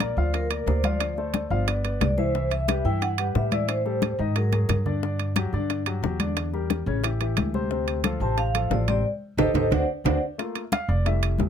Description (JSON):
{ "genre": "Afro-Cuban jazz", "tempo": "179 BPM", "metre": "4/4", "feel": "straight", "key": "G minor", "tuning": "A4 = 440 Hz", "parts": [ { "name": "vibraphone with medium mallets", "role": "melody", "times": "0.0-4.8, 8.2-10.2 s", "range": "A4 to A5", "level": "-28 LUFS", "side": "equal", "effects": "none" }, { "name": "warm concert grand piano", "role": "accompaniment", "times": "0.0-11.5 s", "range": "C3 to F5", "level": "-30 LUFS", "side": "left 5 dB", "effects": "none" }, { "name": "upright bass", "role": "bass", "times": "0.0-11.5 s", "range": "F1 to A2", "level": "-26 LUFS", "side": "equal", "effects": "none" }, { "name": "bongos", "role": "percussion", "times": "0.0-11.5 s", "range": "none", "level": "-31 LUFS", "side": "left 10 dB", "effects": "none" }, { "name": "congas", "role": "percussion", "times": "0.0-11.5 s", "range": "none", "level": "-30 LUFS", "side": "left 1 dB", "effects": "none" }, { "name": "timbales", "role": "percussion", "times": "0.0-11.5 s", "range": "none", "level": "-29 LUFS", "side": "right 13 dB", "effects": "none" } ], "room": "little or no reverb", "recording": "close, detailed microphones", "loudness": "-22 LUFS", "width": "side -8 dB against mid", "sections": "0.0-10.4 A section; 10.4-11.5 B section", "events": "drum fill 4.5-5.0, 9.7-10.4; band accent 9.0-10.4; grand piano solo 10.4-11.5", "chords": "0.0 Bb; 1.0 Dm7; 1.7 G6; 2.3 Cmaj7#11; 3.7 Am7; 4.4 Absus2; 5.0 G5; 6.4 Em7b5; 7.0 A5; 7.7 Dm7; 9.0 Am7b5; 9.7 D7; 10.4 Fadd11", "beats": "0.00 0.34 0.67 | 1.01 1.34 1.68 2.01 | 2.35 2.68 3.02 3.35 | 3.69 4.02 4.36 4.69 | 5.03 5.36 5.70 6.03 | 6.37 6.70 7.04 7.37 | 7.71 8.04 8.38 8.71 | 9.05 9.38 9.72 10.05 | 10.39 10.72 11.06 11.39" }